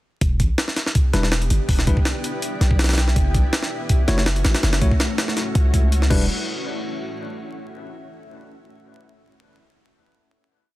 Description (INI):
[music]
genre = drum and bass, jungle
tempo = 163 BPM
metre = 4/4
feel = swing 53% on 16ths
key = E dorian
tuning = A4 = 440 Hz
[part]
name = granular cloud pad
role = sustained chords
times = 1.0-6.3 s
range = A3 to G4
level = -29 LUFS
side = equal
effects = built-in reverb
[part]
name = long sustained 808-style bass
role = bass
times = 0.2-6.3 s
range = E1 to C#2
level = -19 LUFS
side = equal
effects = none
[part]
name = jungle sampler-style drum kit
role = drums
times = 0.2-6.2 s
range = crash cymbal, hi-hat, kick drum, snare drum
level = -20 LUFS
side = equal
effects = studio reverb
[part]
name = bell-like tine electric piano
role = stabs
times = 1.1-6.2 s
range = G3 to C#5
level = -28 LUFS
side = left 2 dB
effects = dub echo
[sound]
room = little or no reverb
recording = dense, heavily limited modern master, vinyl crackle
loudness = -17 LUFS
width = side -17 dB against mid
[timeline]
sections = 0.2-6.1 drop; 6.1-7.6 final chord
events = drop 0.2-6.1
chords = 0.2 Em7; 3.2 F#m7; 6.1 Em7